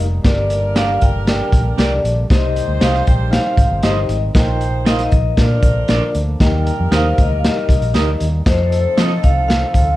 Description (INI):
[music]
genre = uptempo 1960s-style soul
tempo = 117 BPM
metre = 4/4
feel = straight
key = Eb major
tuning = A4 = 441 Hz
[part]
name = bright reed electric piano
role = accompaniment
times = 0.0-9.8 s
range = G2 to F5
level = -24 LUFS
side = left 2 dB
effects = fast tremolo
[part]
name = percussive tonewheel organ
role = sustained chords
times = 0.0-10.0 s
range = D3 to Eb4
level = -30 LUFS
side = right 1 dB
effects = none
[part]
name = vintage muted fingered electric bass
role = bass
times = 0.0-9.9 s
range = F1 to F3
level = -18 LUFS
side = equal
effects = none
[part]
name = warm horn section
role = second line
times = 0.2-10.0 s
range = F3 to C5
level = -28 LUFS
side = right 2 dB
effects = none
[part]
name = crunchy breakbeat drum kit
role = drums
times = 0.2-9.9 s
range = hi-hat, kick drum, snare drum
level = -16 LUFS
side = equal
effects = none
[part]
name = vibraphone with medium hard mallets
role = melody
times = 0.3-10.0 s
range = C5 to G5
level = -21 LUFS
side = left 1 dB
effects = plate reverb
[part]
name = electric guitar at the edge of break-up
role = stabs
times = 0.8-9.1 s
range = Bb3 to Eb5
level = -24 LUFS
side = right 7 dB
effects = none
[sound]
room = light reverb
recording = dark, warm production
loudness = -13 LUFS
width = side -16 dB against mid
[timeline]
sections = 0.0-10.0 A section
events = none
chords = 0.2 Gm; 2.3 Cm; 4.4 Bbsus4; 5.4 Bb; 6.4 Eb; 8.5 F7